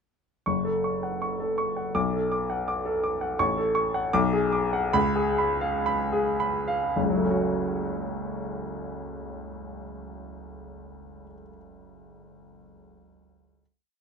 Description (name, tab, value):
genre	classical, romantic character piece for solo piano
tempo	51-84 BPM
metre	2/4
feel	rubato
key	F# minor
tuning	A4 = 440 Hz
part	clear grand piano	solo	0.5-13.6 s	F#1 to D6	-25 LUFS	equal	none
room	light reverb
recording	close, detailed microphones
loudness	-24 LUFS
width	side -6 dB against mid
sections	0.5-7.0 A section; 7.0-11.5 final chord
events	slowing down 2.7-7.0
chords	0.5 F#m; 2.0 Bm7; 3.4 F#m/A; 4.1 G#m7b5/B; 4.9 C#7; 7.0 F#m